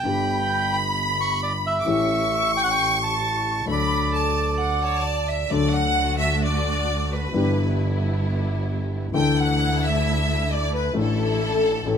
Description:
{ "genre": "tango", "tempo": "132 BPM", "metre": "4/4", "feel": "rubato", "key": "D major", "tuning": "A4 = 440 Hz", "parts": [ { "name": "bandoneon", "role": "melody", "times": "0.0-5.0 s", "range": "D5 to C#6", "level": "-25 LUFS", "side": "right 2 dB", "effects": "none" }, { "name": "clear studio violin section", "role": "second line", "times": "0.0-12.0 s", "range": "A4 to D6", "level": "-24 LUFS", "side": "left 2 dB", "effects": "none" }, { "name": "dark concert grand piano", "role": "accompaniment", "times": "0.0-12.0 s", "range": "G1 to A4", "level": "-25 LUFS", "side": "left 2 dB", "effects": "none" }, { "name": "clear double bass", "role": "bass", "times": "0.1-12.0 s", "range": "G1 to D2", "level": "-27 LUFS", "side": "right 1 dB", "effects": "none" }, { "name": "vibraphone with medium hard mallets", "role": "second line", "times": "4.1-5.5 s", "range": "A4 to F#5", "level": "-27 LUFS", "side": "right 6 dB", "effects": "none" }, { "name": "warm symphonic string section", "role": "stabs", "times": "5.5-12.0 s", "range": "G3 to F#4", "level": "-31 LUFS", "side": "right 5 dB", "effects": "none" } ], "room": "light reverb", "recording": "minimal, uncompressed stereo recording", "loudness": "-20 LUFS", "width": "side -7 dB against mid", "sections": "0.0-5.5 A section; 5.5-12.0 B section", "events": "violin section solo 5.5-12.0", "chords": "0.1 G; 1.9 A7; 3.7 D; 7.3 G6; 9.2 Dsus2; 11.0 Asus4" }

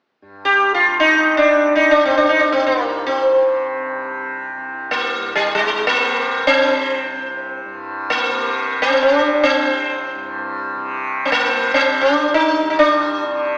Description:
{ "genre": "indian classical, Hindustani", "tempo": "free time", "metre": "none", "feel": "none", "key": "unclear", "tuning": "A4 = 442 Hz", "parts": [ { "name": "tanpura", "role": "drone", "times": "0.2-13.6 s", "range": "C2 to C3", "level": "-26 LUFS", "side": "equal", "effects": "none" }, { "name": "sitar", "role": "melody", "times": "0.5-13.6 s", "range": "G3 to G4", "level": "-17 LUFS", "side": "equal", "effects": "none" } ], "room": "wet scoring stage reverb, RT60 1.6 s", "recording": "recorded in a church or concert hall, AM radio sound", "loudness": "-17 LUFS", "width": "mono", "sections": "0.2-13.6 A section", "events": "none", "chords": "none" }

